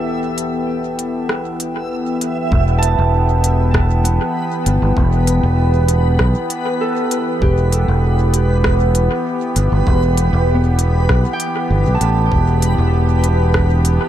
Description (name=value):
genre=ambient dub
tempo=98 BPM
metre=4/4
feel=straight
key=E minor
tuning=A4 = 443 Hz
part: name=warm analog pad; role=sustained chords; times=0.0-14.1 s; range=E3 to G5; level=-21 LUFS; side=left 1 dB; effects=chorus
part: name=Celtic harp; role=arpeggios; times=0.0-13.7 s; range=B3 to A5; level=-25 LUFS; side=right 4 dB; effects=dub echo
part: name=overdriven fingered electric bass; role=bass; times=0.0-14.0 s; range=E1 to B1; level=-14 LUFS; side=equal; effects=tube saturation
part: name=backwards swelling texture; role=texture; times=0.0-14.1 s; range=B4 to E5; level=-24 LUFS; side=right 2 dB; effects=built-in reverb
part: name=organic electronic drum kit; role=drums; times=0.4-14.0 s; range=hi-hat, rim click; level=-23 LUFS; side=equal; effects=dub echo
part: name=electronic kick drum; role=drums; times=2.5-13.7 s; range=none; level=-18 LUFS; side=equal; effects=none
room=little or no reverb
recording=echo-heavy mix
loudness=-14 LUFS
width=side -11 dB against mid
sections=0.0-2.5 A section; 2.5-14.1 B section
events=none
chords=0.0 Em